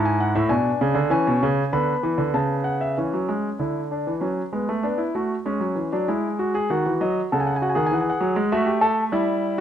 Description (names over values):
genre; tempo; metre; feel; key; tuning
classical, baroque-style 3-part fugue for grand piano; 98 BPM; 3/4; straight; unclear; A4 = 439 Hz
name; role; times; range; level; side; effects
warm concert grand piano; solo; 0.0-9.6 s; G#2 to B5; -20 LUFS; equal; none
room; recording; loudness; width
light reverb; close, detailed microphones; -20 LUFS; side -9 dB against mid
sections
0.0-3.0 A section; 3.0-9.6 B section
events
none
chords
0.0 A5; 0.5 G#dim/B; 1.1 E7; 2.4 A/C#; 3.0 C#m/E; 4.2 F#m; 4.8 Bm; 6.1 E/G#; 6.7 F#m69; 7.9 E; 8.5 A5